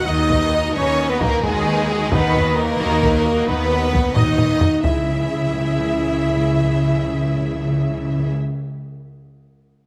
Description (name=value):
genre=cinematic, epic orchestral film score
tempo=88 BPM (dotted quarters)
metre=12/8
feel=straight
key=C# dorian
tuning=A4 = 441 Hz
part: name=warm symphonic violin section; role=melody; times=0.0-8.3 s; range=G#4 to E5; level=-31 LUFS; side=equal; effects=none
part: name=clear chamber violin section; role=second line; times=0.0-8.3 s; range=G#4 to E5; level=-31 LUFS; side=equal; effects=none
part: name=concert flute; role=second line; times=0.0-8.3 s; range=E5 to D#6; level=-31 LUFS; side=equal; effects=none
part: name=rich symphonic viola section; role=accompaniment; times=0.0-8.3 s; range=D#4 to D#5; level=-32 LUFS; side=equal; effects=none
part: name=warm French horn section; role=sustained chords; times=0.0-8.3 s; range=G#3 to E4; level=-24 LUFS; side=equal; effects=none
part: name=clear symphonic double bass section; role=bass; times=0.1-8.3 s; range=C#2 to D#2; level=-27 LUFS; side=equal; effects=none
part: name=rich symphonic cello section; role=bass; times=0.1-8.3 s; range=C#3 to D#3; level=-27 LUFS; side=equal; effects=none
part: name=taiko ensemble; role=drums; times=0.3-5.7 s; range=none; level=-23 LUFS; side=equal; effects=none
part: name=timpani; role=percussion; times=4.8-8.4 s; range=C#3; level=-26 LUFS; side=equal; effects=none
room=moderate scoring stage reverb, RT60 1.7 s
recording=none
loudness=-19 LUFS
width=mono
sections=0.0-4.8 A section; 4.8-7.6 B section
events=drum fill 4.2-4.8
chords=0.0 B/D#; 4.8 C#m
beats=0.08 0.76 1.44 | 2.12 2.80 3.48 4.16 | 4.84 5.51 6.19 6.87